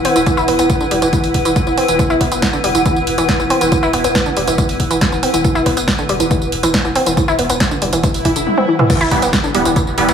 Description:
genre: driving peak-time techno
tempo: 139 BPM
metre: 4/4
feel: straight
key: E minor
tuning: A4 = 439 Hz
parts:
  - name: saturated sub bass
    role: bass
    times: 0.0-10.1 s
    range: E1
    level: -28 LUFS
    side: equal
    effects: overdrive, sidechain pumping, low-pass filter
  - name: techno drum kit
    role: drums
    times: 0.0-10.1 s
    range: crash cymbal, hi-hat, snare drum, tambourine, toms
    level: -20 LUFS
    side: right 1 dB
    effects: none
  - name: granular cloud pad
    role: texture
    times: 0.0-8.5 s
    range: E4 to F#5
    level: -19 LUFS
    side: equal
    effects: built-in reverb, sidechain pumping
  - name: analog pluck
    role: riff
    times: 0.1-10.1 s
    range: D3 to E4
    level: -17 LUFS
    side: equal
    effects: chorus, sidechain pumping, digital delay
  - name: electronic kick drum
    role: drums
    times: 0.3-9.8 s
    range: none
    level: -18 LUFS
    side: equal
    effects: none
  - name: swell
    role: sound effects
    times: 8.2-8.9 s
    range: none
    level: -22 LUFS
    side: right 1 dB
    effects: none
  - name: rave stab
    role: stabs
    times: 9.1-10.1 s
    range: E3 to B3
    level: -16 LUFS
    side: right 2 dB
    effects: chorus, built-in reverb, sidechain pumping, digital delay
room: moderate lush hall reverb, RT60 2.1 s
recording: studio reverb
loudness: -12 LUFS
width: side -7 dB against mid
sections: 0.0-8.9 A section; 8.9-10.1 B section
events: swell 8.2-8.9; drum fill 8.5-8.9; drop 8.9-10.1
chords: 0.0 E5; 8.9 Em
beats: | 0.27 0.70 1.13 1.56 | 1.99 2.42 2.85 3.29 | 3.72 4.15 4.58 5.01 | 5.45 5.88 6.31 6.74 | 7.17 7.60 8.04 8.47 | 8.90 9.33 9.76

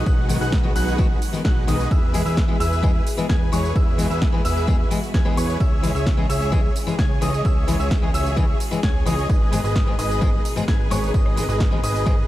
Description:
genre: EDM, festival progressive house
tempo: 130 BPM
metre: 4/4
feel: straight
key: unclear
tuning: A4 = 440 Hz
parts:
  - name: bright studio string section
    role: sustained chords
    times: 0.0-12.3 s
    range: B2 to G#4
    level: -33 LUFS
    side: equal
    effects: sidechain pumping
  - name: dark baby grand piano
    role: arpeggios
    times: 0.0-12.3 s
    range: C#6 to G#6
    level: -31 LUFS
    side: left 2 dB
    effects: sidechain pumping, tape echo
  - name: dense compressed supersaw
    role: riff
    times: 0.0-12.3 s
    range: D#4 to G#5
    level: -28 LUFS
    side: right 1 dB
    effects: cassette tape, sidechain pumping, tape echo
  - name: fat analog bass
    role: bass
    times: 0.0-12.2 s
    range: G#1 to E2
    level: -25 LUFS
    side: equal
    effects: sidechain pumping
  - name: big-room dance drum kit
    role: drums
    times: 0.1-12.2 s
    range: hi-hat, ride cymbal, rim click, snare drum, tambourine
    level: -31 LUFS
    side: right 1 dB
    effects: overdrive
  - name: electronic kick drum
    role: drums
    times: 0.1-12.2 s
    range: none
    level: -20 LUFS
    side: equal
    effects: overdrive
  - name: picked steel-string acoustic guitar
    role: accompaniment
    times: 0.3-12.1 s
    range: G#2 to G#4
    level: -27 LUFS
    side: left 3 dB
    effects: sidechain pumping, tape echo
room: light reverb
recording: dark, warm production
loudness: -18 LUFS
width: side -15 dB against mid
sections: 0.0-12.3 A section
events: none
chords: 0.0 B6; 1.9 E; 5.6 C#m; 9.3 G#m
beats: | 0.06 0.53 0.99 1.45 | 1.91 2.37 2.83 3.29 | 3.76 4.22 4.68 5.14 | 5.60 6.06 6.53 6.99 | 7.45 7.91 8.37 8.83 | 9.29 9.76 10.22 10.68 | 11.14 11.60 12.06

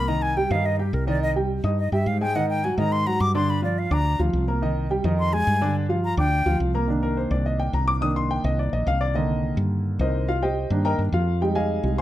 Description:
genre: Afro-Cuban jazz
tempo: 212 BPM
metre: 4/4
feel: straight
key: C minor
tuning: A4 = 440 Hz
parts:
  - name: reedy concert flute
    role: melody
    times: 0.0-6.6 s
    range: G4 to D6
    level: -26 LUFS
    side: left 1 dB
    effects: none
  - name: warm concert grand piano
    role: accompaniment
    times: 0.0-12.0 s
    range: D3 to Eb6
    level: -24 LUFS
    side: equal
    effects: none
  - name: woody fretless electric bass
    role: bass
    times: 0.0-12.0 s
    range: Bb1 to Ab2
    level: -24 LUFS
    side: equal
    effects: none
room: light reverb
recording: close, detailed microphones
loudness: -21 LUFS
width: side -14 dB against mid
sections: 0.0-6.9 A section; 6.9-12.0 A section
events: flute solo 0.0-6.9; grand piano solo 6.9-12.0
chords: 0.1 Cm; 2.4 Ab5; 3.5 Gm7; 4.6 Cm; 5.2 Fm7; 5.8 Gm7; 6.9 Cm7; 11.4 Fm7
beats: | 0.08 0.37 0.65 0.94 | 1.22 1.50 1.79 2.07 | 2.36 2.64 2.92 3.21 | 3.49 3.77 4.06 4.34 | 4.62 4.91 5.19 5.47 | 5.76 6.04 6.32 6.60 | 6.89 7.17 7.45 7.74 | 8.02 8.30 8.59 8.87 | 9.15 9.43 9.72 10.00 | 10.28 10.57 10.85 11.13 | 11.41 11.70 11.98

